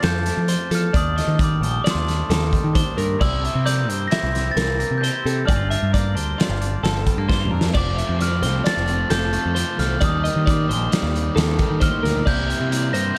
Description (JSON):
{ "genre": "math rock and midwest emo", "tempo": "132 BPM", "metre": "5/4", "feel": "straight", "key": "unclear", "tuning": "A4 = 439 Hz", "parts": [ { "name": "glockenspiel with rubber mallets", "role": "melody", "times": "0.0-13.2 s", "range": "C6 to Bb6", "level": "-29 LUFS", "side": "equal", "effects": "none" }, { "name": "twangy electric guitar", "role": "accompaniment", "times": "0.0-13.2 s", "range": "Eb2 to F4", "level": "-33 LUFS", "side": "equal", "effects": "none" }, { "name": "twelve-string electric guitar", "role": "arpeggios", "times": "0.0-13.2 s", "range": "A4 to E5", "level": "-30 LUFS", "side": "equal", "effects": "none" }, { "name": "growling picked electric bass", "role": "bass", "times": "0.0-13.1 s", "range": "F1 to F3", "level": "-25 LUFS", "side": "equal", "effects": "overdrive" }, { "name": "loose indie drum kit", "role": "drums", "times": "0.0-13.0 s", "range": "crash cymbal, hi-hat, kick drum, snare drum, toms", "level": "-26 LUFS", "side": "equal", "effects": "none" }, { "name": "overdriven electric guitar", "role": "riff", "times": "7.7-13.2 s", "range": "C3 to F4", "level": "-30 LUFS", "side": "equal", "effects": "none" } ], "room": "light reverb", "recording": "dark, warm production", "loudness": "-20 LUFS", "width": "mono", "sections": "0.0-13.2 A section", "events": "drum fill 7.3-7.7", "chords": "0.0 F6; 0.9 Ebmaj7#11; 3.2 C7; 5.5 Gm9; 7.7 F6; 10.0 Ebmaj7#11; 12.3 C7" }